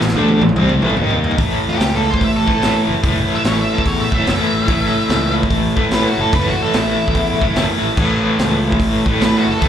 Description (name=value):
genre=blues rock power trio and southern rock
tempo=146 BPM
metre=4/4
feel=swing 64% on 8ths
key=A major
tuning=A4 = 441 Hz
part: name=overdriven electric guitar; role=riff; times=0.0-9.7 s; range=A2 to D#4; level=-17 LUFS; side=equal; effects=tremolo
part: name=fuzz fingered electric bass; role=bass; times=0.0-9.7 s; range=F#1 to A2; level=-20 LUFS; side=equal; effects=overdrive
part: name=raw garage drum kit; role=drums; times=0.0-9.7 s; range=crash cymbal, hi-hat, kick drum, snare drum, toms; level=-19 LUFS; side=equal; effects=none
part: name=octave-fuzz lead guitar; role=melody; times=1.7-9.7 s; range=E4 to E5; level=-21 LUFS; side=equal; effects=distortion, slapback echo
room=little or no reverb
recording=live gig heard through the venue's PA, club reverb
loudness=-13 LUFS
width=side -9 dB against mid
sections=0.0-1.4 A section; 1.4-9.7 B section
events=drum fill 0.0-1.4; lead electric guitar solo 1.4-9.7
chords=0.0 A5; 1.0 D#5; 1.4 A5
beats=0.15 0.56 0.98 | 1.39 1.80 2.21 2.62 | 3.04 3.45 3.86 4.27 | 4.68 5.09 5.51 5.92 | 6.33 6.74 7.16 7.57 | 7.98 8.39 8.80 9.22 | 9.63